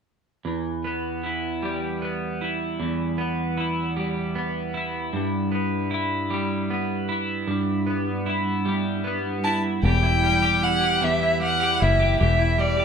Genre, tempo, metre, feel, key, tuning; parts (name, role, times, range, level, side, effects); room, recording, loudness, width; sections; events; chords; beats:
six-eight pop ballad; 51 BPM (dotted quarters); 6/8; straight; E minor; A4 = 440 Hz
twelve-string electric guitar; accompaniment; 0.4-12.8 s; E2 to G4; -24 LUFS; right 1 dB; double-tracked left and right
rich violin; melody; 9.4-12.8 s; D5 to A5; -22 LUFS; left 1 dB
fingered electric bass; bass; 9.8-12.8 s; E1 to F#1; -22 LUFS; left 1 dB
wet studio reverb, RT60 0.5 s; rough home demo mix; -22 LUFS; side -6 dB against mid
0.4-9.8 A section; 9.8-12.8 B section
0.4 Em; 5.1 G6; 9.8 Em
| 0.44 1.62 | 2.80 3.97 | 5.14 6.31 | 7.48 8.65 | 9.84 11.02 | 12.20